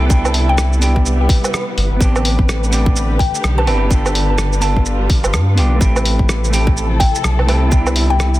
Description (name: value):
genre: future garage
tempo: 126 BPM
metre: 4/4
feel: swing 61% on 16ths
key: A minor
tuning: A4 = 440 Hz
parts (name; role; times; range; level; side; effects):
- semi-hollow electric guitar; accompaniment; 0.0-8.4 s; A3 to A4; -22 LUFS; right 1 dB; sidechain pumping, tape echo
- dark studio string section; sustained chords; 0.0-8.4 s; C3 to B4; -23 LUFS; left 1 dB; sidechain pumping
- soft dub sub bass; bass; 0.0-8.4 s; G1 to G2; -16 LUFS; equal; sidechain pumping
- electronic kick drum; drums; 0.1-7.8 s; none; -14 LUFS; equal; studio reverb
- lo-fi sampler-style drum kit; drums; 0.1-8.4 s; hi-hat, rim click, shaker, woodblock; -21 LUFS; right 1 dB; studio reverb, soft clipping on snare
- mallet-like synth pluck; melody; 0.5-8.4 s; G5 to A5; -24 LUFS; left 2 dB; chorus, phaser, tape echo
room: light reverb, digital ambience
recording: dense, heavily limited modern master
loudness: -12 LUFS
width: side -16 dB against mid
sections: 0.0-8.4 A section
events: none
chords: 0.1 Am11; 3.9 G7; 5.8 Fmaj7/A; 7.7 Am11